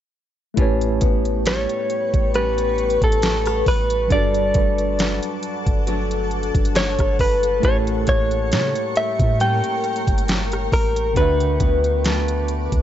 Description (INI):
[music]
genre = contemporary R&B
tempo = 68 BPM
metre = 4/4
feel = swing 54% on 16ths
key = unclear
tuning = A4 = 436 Hz
[part]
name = mellow tine electric piano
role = accompaniment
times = 0.5-12.8 s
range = D3 to E5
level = -27 LUFS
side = right 1 dB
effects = medium stereo tremolo
[part]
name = granular cloud pad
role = sustained chords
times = 1.8-12.8 s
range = A4 to D6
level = -29 LUFS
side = left 4 dB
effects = built-in reverb, sidechain pumping
[part]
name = nylon-string guitar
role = arpeggios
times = 0.6-12.8 s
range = G2 to F#4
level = -28 LUFS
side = left 2 dB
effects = none
[part]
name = soft 808-style bass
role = bass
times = 0.6-12.8 s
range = G1 to C#3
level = -24 LUFS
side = equal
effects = none
[part]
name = smooth R&B drum kit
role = drums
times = 0.6-12.8 s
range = hi-hat, kick drum, rim click, snare drum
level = -21 LUFS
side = equal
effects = none
[part]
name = direct-recorded clean electric guitar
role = melody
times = 1.5-12.8 s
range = A4 to G5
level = -22 LUFS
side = equal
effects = none
[sound]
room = digital ambience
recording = dry, gritty hardware recording, nothing above 7.9 kHz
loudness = -17 LUFS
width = side -11 dB against mid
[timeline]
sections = 0.6-12.8 A section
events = none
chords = 0.6 A9; 4.1 Gmaj9#11; 7.6 A7b9; 11.2 D6